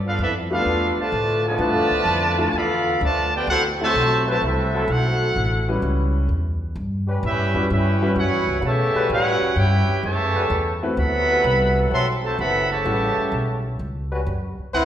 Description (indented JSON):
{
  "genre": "jazz",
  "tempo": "128 BPM",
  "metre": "4/4",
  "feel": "swing 68% on 8ths",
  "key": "unclear",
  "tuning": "A4 = 440 Hz",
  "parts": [
    { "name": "upright bass", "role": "bass", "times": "0.0-14.8 s", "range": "F#1 to B2", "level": "-24 LUFS", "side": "equal", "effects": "none" },
    { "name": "clear trumpet section", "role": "melody", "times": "0.1-13.6 s", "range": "C4 to C6", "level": "-22 LUFS", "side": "right 1 dB", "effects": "none" },
    { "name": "muted trombone section", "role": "second line", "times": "0.1-13.6 s", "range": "C3 to G4", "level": "-24 LUFS", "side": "equal", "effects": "none" },
    { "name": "warm grand piano", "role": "accompaniment", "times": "0.5-13.6 s", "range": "G3 to F#5", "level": "-26 LUFS", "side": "left 2 dB", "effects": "none" },
    { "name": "mellow trombone section", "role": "sustained chords", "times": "1.4-14.2 s", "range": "C3 to B4", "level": "-28 LUFS", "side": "left 1 dB", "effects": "none" },
    { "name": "clear trumpet section", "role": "stabs", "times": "14.7-14.8 s", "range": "C4 to F#5", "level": "-17 LUFS", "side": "equal", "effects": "none" }
  ],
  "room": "wet recital hall reverb, RT60 1.5 s",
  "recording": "recorded in a church or concert hall",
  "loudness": "-18 LUFS",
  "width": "side -10 dB against mid",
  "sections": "0.0-14.7 A section",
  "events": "none",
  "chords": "0.0 G13; 3.5 D13; 5.3 A13; 11.0 D13; 12.9 A13"
}